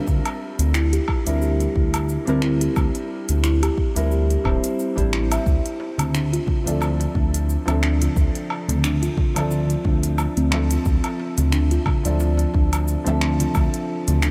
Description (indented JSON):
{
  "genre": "organic downtempo",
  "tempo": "89 BPM",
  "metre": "4/4",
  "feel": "swing 56% on 16ths",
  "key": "D minor",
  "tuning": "A4 = 440 Hz",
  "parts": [
    { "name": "felt-muted upright piano", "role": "accompaniment", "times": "0.0-14.3 s", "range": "F3 to E5", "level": "-31 LUFS", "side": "equal", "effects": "lush chorus, sidechain pumping, tape echo" },
    { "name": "steel tongue drum", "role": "arpeggios", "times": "0.0-14.3 s", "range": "C4 to E5", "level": "-28 LUFS", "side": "equal", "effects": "tape echo" },
    { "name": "smooth gliding synth bass", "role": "bass", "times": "0.1-14.3 s", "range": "D1 to D2", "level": "-23 LUFS", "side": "equal", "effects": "none" },
    { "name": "electronic kick drum", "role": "drums", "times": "0.1-13.7 s", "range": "none", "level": "-24 LUFS", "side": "equal", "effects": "none" },
    { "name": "organic electronic drum kit", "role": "drums", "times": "0.1-14.3 s", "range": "cabasa, finger snaps, hi-hat, woodblock", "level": "-32 LUFS", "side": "equal", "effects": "overdrive" },
    { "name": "darbuka", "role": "percussion", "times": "5.8-14.2 s", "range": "none", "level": "-34 LUFS", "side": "equal", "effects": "none" }
  ],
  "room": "moderate huge ambient reverb, RT60 7.0 s",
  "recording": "dreamy mix soaked in reverb",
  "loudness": "-21 LUFS",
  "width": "mono",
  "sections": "0.0-14.3 A section",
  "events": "none",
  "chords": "0.1 C7/D; 5.5 Dm7"
}